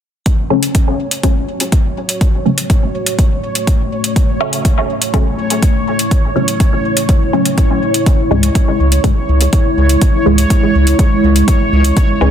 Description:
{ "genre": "dub techno", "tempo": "123 BPM", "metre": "4/4", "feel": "straight", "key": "F# minor", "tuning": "A4 = 440 Hz", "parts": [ { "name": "deep dark ambient pad", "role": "sustained chords", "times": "1.6-12.3 s", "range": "G#3 to F#4", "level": "-18 LUFS", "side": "left 1 dB", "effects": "chorus, built-in reverb, sidechain pumping" }, { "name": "electronic hi-hat", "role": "drums", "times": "0.3-12.1 s", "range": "none", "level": "-18 LUFS", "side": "equal", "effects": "overdrive" }, { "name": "electronic kick drum", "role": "drums", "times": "0.3-12.1 s", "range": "none", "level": "-13 LUFS", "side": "equal", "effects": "overdrive" }, { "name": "bubbling stepped-filter texture", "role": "texture", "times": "0.3-12.3 s", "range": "C#5", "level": "-22 LUFS", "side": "right 3 dB", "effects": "chorus, built-in reverb, sidechain pumping" }, { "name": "filtered dub chord stab", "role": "stabs", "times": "0.5-12.3 s", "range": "G#2 to C#4", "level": "-18 LUFS", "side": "left 1 dB", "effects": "phaser, sidechain pumping, dub echo" }, { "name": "round analog bass", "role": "bass", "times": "8.3-12.3 s", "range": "C#2", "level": "-11 LUFS", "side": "equal", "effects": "sidechain pumping" } ], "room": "light reverb, digital ambience", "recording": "dense, heavily limited modern master", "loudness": "-11 LUFS", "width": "side -9 dB against mid", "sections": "0.3-12.3 A section", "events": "filter sweep on synth stab 0.3-12.3; filter sweep on ambient pad 0.3-12.3", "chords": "0.3 F#m; 8.1 C#m", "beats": "| 0.26 0.75 1.24 1.72 | 2.21 2.70 3.19 3.67 | 4.16 4.65 5.14 5.62 | 6.11 6.60 7.09 7.58 | 8.06 8.55 9.04 9.53 | 10.02 10.50 10.99 11.48 | 11.97" }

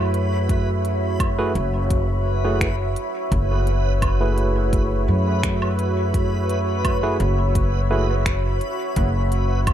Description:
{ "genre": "ambient dub", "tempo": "85 BPM", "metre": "4/4", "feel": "straight", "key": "F# minor", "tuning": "A4 = 440 Hz", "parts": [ { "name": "deep dark ambient pad", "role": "sustained chords", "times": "0.0-9.7 s", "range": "F#4 to B5", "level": "-26 LUFS", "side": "equal", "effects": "chorus, built-in reverb" }, { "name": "barky tine electric piano", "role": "stabs", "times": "0.0-8.1 s", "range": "A3 to B4", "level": "-27 LUFS", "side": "right 2 dB", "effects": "dub echo" }, { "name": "upright bass", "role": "bass", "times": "0.0-9.7 s", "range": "F#1 to F#2", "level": "-21 LUFS", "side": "equal", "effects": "tube saturation" }, { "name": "backwards swelling texture", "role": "texture", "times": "0.0-9.7 s", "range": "B4", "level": "-34 LUFS", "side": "right 1 dB", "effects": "built-in reverb" }, { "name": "organic electronic drum kit", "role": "drums", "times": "0.1-9.7 s", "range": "finger snaps, hi-hat, woodblock", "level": "-29 LUFS", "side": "right 1 dB", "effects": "dub echo" }, { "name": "electronic kick drum", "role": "drums", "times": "0.5-9.7 s", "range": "none", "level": "-24 LUFS", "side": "equal", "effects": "none" } ], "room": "little or no reverb", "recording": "none", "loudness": "-18 LUFS", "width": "side -10 dB against mid", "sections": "0.0-9.7 A section", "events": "none", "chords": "0.0 F#m11", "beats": "| 0.49 1.20 1.91 2.61 | 3.32 4.02 4.73 5.43 | 6.14 6.85 7.55 8.26 | 8.96 9.67" }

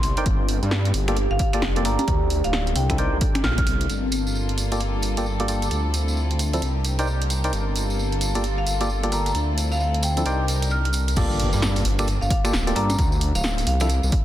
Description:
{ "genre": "UK garage, two-step garage", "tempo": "132 BPM", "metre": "4/4", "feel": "swing 62% on 16ths", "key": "G minor", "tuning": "A4 = 441 Hz", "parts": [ { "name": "marimba with hard mallets", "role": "melody", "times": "0.0-3.6, 8.6-13.9 s", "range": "F5 to F6", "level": "-30 LUFS", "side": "equal", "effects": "dub echo" }, { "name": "dark detuned saw bass", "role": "bass", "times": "0.0-14.1 s", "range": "D1 to G2", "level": "-23 LUFS", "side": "equal", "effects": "tube saturation" }, { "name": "punchy analog drum machine", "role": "drums", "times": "0.0-14.2 s", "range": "congas, crash cymbal, finger snaps, hi-hat, snare drum", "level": "-29 LUFS", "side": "right 1 dB", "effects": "none" }, { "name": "deep dark ambient pad", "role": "texture", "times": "0.1-11.2 s", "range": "C4 to Bb5", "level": "-32 LUFS", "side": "equal", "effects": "chorus, built-in reverb, sidechain pumping" }, { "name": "percussive organ stab", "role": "stabs", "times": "0.2-13.9 s", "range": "F3 to G5", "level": "-28 LUFS", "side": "equal", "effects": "chorus, dub echo" }, { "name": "electronic kick drum", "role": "drums", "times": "0.3-3.7, 11.2-14.2 s", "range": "none", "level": "-23 LUFS", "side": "equal", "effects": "none" }, { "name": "warm studio violin section", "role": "sustained chords", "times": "3.9-11.2 s", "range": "Bb3 to Bb4", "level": "-33 LUFS", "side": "left 2 dB", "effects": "sidechain pumping" }, { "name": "tambourine", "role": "percussion", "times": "3.9-14.1 s", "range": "none", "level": "-34 LUFS", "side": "right 2 dB", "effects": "none" }, { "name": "impact", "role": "sound effects", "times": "11.2-13.0 s", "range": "none", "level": "-29 LUFS", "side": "equal", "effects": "none" } ], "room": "light reverb", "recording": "dense, heavily limited modern master", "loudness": "-20 LUFS", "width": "side -12 dB against mid", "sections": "0.0-3.9 A section; 3.9-11.2 B section; 11.2-14.2 C section", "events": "band accent 3.4; filter sweep on synth stab 3.9-11.2; drop 11.2-14.2; impact 11.2-13.0", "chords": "0.3 Gm9; 2.1 Dm9; 3.0 Cm9; 3.9 Gm9; 5.7 Dm9; 6.6 Cm9; 7.5 Gm9; 9.3 Dm9; 10.3 Cm9; 11.2 Gm9; 13.0 Dm9", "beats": "| 0.26 0.71 1.17 1.62 | 2.08 2.53 2.99 3.44 | 3.90 4.35 4.80 5.26 | 5.71 6.17 6.62 7.08 | 7.53 7.99 8.44 8.90 | 9.35 9.80 10.26 10.71 | 11.17 11.62 12.08 12.53 | 12.99 13.44 13.90" }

